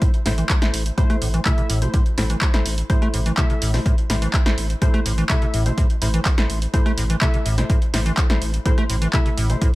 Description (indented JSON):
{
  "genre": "acid house",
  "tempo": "125 BPM",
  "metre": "4/4",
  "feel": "straight",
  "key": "A minor",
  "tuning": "A4 = 437 Hz",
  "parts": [
    { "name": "acid bass, square", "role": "riff", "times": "0.0-9.7 s", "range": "A2 to A3", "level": "-25 LUFS", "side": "equal", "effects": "overdrive, lush chorus, sidechain pumping, digital delay" },
    { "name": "percussive organ stab", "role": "stabs", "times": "0.0-9.7 s", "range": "A3 to E5", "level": "-27 LUFS", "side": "left 1 dB", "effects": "ensemble chorus, digital delay" },
    { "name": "electronic kick drum", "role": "drums", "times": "0.0-9.7 s", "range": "none", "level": "-19 LUFS", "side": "equal", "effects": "overdrive" },
    { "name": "punchy analog drum machine", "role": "drums", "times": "0.0-9.7 s", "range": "handclaps, hi-hat, rim click, snare drum", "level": "-26 LUFS", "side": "equal", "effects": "none" },
    { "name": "round analog bass", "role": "bass", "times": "0.3-9.5 s", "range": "A1", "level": "-23 LUFS", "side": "equal", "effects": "sidechain pumping" }
  ],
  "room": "digital ambience",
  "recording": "none",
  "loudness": "-17 LUFS",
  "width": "side -18 dB against mid",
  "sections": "0.0-9.8 A section",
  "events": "filter sweep on acid bass 0.0-9.8",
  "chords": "0.0 Am"
}